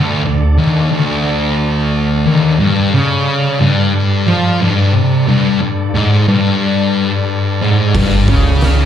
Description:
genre	stoner and doom metal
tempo	90 BPM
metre	4/4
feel	straight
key	unclear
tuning	A4 = 442 Hz
part	bright tonewheel organ	sustained chords	0.0-8.9 s	D3 to D5	-24 LUFS	right 2 dB	slow rotary speaker, overdrive
part	thick fuzz guitar	riff	0.0-8.9 s	D2 to F3	-13 LUFS	left 5 dB	distortion, slapback echo
part	thick fuzz guitar	riff	0.0-8.9 s	D2 to F3	-16 LUFS	right 8 dB	distortion, slapback echo
part	oversized low-tuned drum kit	drums	7.9-8.8 s	hi-hat, kick drum, snare drum	-16 LUFS	right 1 dB	none
part	fuzz fingered electric bass	bass	8.0-8.9 s	G1 to C#2	-12 LUFS	right 1 dB	overdrive
room	moderate club reverb, RT60 0.6 s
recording	live gig heard through the venue's PA, club reverb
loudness	-11 LUFS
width	side -9 dB against mid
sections	0.0-8.9 A section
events	none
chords	0.0 D5; 2.6 G5

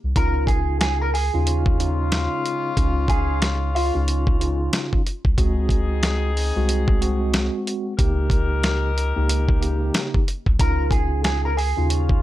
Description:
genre	hip hop, boom-bap hip-hop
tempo	92 BPM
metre	4/4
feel	swing 62% on 16ths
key	Db major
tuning	A4 = 440 Hz
part	soft dub sub bass	bass	0.0-12.2 s	C2 to Eb2	-22 LUFS	equal	none
part	electric guitar at the edge of break-up	melody	0.2-3.9, 10.6-12.2 s	F4 to Bb5	-26 LUFS	right 2 dB	high-pass filter, low-pass filter, slapback echo, plate reverb
part	mellow tine electric piano	accompaniment	0.2-12.2 s	Db3 to G4	-27 LUFS	right 1 dB	medium stereo tremolo, cassette tape, high-pass filter, low-pass filter, plate reverb
part	dusty soul sampler-style drum kit	drums	0.2-12.2 s	hi-hat, kick drum, snare drum	-21 LUFS	equal	none
part	warm horn section	stabs	1.5-12.2 s	Ab3 to Bb4	-29 LUFS	left 5 dB	high-pass filter, low-pass filter, slapback echo, plate reverb
room	light reverb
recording	none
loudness	-19 LUFS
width	side -14 dB against mid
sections	0.2-12.2 A section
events	break 0.0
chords	0.2 Dbadd9; 5.4 Ab7; 8.0 Eb/Db; 10.6 Dbadd9

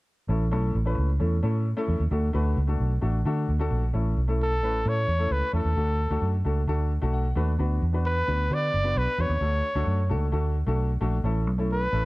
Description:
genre	uptempo 1960s-style soul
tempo	132 BPM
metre	4/4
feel	straight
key	A major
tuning	A4 = 444 Hz
part	clear concert grand piano	accompaniment	0.3-12.1 s	A3 to F#5	-31 LUFS	left 2 dB	none
part	vintage muted fingered electric bass	bass	0.3-12.1 s	F#1 to D3	-24 LUFS	equal	none
part	breathy trumpet	melody	4.4-12.1 s	A4 to D5	-27 LUFS	equal	none
room	little or no reverb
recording	dark, warm production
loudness	-23 LUFS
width	side -20 dB against mid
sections	0.3-3.9 A section; 3.9-12.1 B section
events	grand piano fill 6.9-7.6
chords	0.3 A; 2.1 D; 3.9 A; 5.8 D; 7.6 Bm/D; 9.4 D; 11.2 A

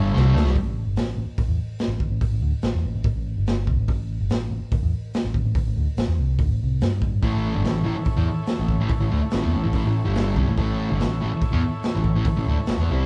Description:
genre	garage rock duo or trio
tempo	144 BPM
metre	4/4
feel	straight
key	A major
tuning	A4 = 440 Hz
part	combo organ	sustained chords	0.0-0.5, 7.2-13.1 s	E4 to G#5	-37 LUFS	equal	none
part	fuzz guitar	riff	0.0-0.5, 7.2-13.1 s	G2 to C4	-26 LUFS	equal	distortion
part	picked electric bass	bass	0.0-13.1 s	G1 to G2	-26 LUFS	equal	none
part	raw garage drum kit	drums	0.2-12.8 s	hi-hat, kick drum, snare drum	-27 LUFS	equal	none
room	moderate large studio reverb, RT60 1.3 s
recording	band playing live in one room, cassette tape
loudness	-23 LUFS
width	mono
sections	0.5-13.1 A section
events	drum fill 0.1-0.5; transistor combo organ fill 9.9-10.6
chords	0.0 A; 0.5 A5; 6.8 N.C.; 7.2 A

